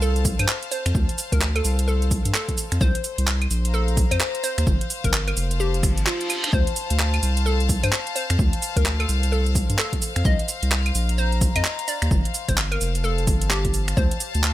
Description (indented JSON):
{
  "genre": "UK garage, two-step garage",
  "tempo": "129 BPM",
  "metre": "4/4",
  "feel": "swing 61% on 16ths",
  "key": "D minor",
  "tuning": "A4 = 439 Hz",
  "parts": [
    { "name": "hollow square pluck", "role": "melody", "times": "0.0-14.1 s", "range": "F4 to Eb5", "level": "-30 LUFS", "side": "equal", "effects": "chorus, digital delay" },
    { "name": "saturated sub bass", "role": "bass", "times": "0.0-14.5 s", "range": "F1 to G2", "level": "-22 LUFS", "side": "equal", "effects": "none" },
    { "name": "garage drum kit", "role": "drums", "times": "0.0-14.5 s", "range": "claves, finger snaps, handclaps, hi-hat, shaker", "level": "-25 LUFS", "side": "right 2 dB", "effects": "studio reverb" },
    { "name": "rich studio string section", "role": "texture", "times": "0.0-14.5 s", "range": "C5 to Bb5", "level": "-31 LUFS", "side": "left 5 dB", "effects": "sidechain pumping" },
    { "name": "electronic kick drum", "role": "drums", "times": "0.2-14.1 s", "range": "none", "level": "-22 LUFS", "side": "equal", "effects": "overdrive, studio reverb" },
    { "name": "reverse cymbal", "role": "sound effects", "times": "6.0-6.5 s", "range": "none", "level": "-31 LUFS", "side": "right 3 dB", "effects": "none" }
  ],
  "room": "little or no reverb",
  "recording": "none",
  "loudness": "-19 LUFS",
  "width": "side -14 dB against mid",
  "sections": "0.0-14.5 A section",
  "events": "reverse cymbal 6.0-6.5",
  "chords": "0.0 Dm7; 2.8 C7(no3); 4.7 Gsus2; 6.5 Dm7; 10.2 Cm7; 12.1 Gsus2; 14.0 Dm7"
}